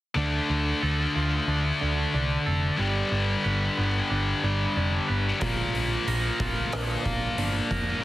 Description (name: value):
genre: quiet-loud alternative rock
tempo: 92 BPM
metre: 4/4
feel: straight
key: D minor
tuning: A4 = 440 Hz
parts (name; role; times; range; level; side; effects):
- scooped high-gain guitar; riff; 0.1-8.0 s; G2 to D4; -26 LUFS; left 3 dB; distortion
- twangy electric guitar; arpeggios; 0.2-8.0 s; Bb2 to B4; -32 LUFS; right 6 dB; none
- hollow-body short-scale picked electric bass; bass; 0.2-7.9 s; F1 to F2; -28 LUFS; equal; none
- oversized low-tuned drum kit; drums; 5.4-7.9 s; hi-hat, kick drum, rim click; -32 LUFS; equal; none
room: little or no reverb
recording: heavily compressed radio sound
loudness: -23 LUFS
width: side -16 dB against mid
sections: 0.2-8.0 A section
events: none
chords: 0.2 Dm; 2.8 G; 5.4 Bb